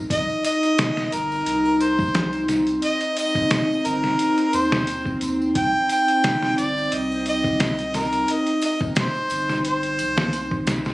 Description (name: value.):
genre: trip hop.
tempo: 88 BPM.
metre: 4/4.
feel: swing 54% on 16ths.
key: C minor.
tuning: A4 = 441 Hz.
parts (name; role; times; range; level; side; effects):
warbly tape-like pad; sustained chords; 0.0-10.9 s; Eb4; -24 LUFS; equal; chorus, built-in reverb.
soft dub sub bass; bass; 0.0-10.9 s; G1 to Eb2; -34 LUFS; equal; tube saturation.
warm harmonica; melody; 0.1-10.6 s; Bb4 to G5; -23 LUFS; equal; tape echo.
trip hop sampler-style drum kit; drums; 0.1-10.9 s; hi-hat, kick drum, snare drum; -25 LUFS; equal; none.
tambourine and triangle; percussion; 0.1-10.9 s; none; -41 LUFS; right 1 dB; none.
bowed-like drone; texture; 2.1-10.9 s; C4; -31 LUFS; equal; built-in reverb.
room: light reverb, digital ambience.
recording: recorded on a phone in the room, club reverb, compression.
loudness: -19 LUFS.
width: side -18 dB against mid.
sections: 0.0-10.9 A section.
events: none.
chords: 0.0 Cm.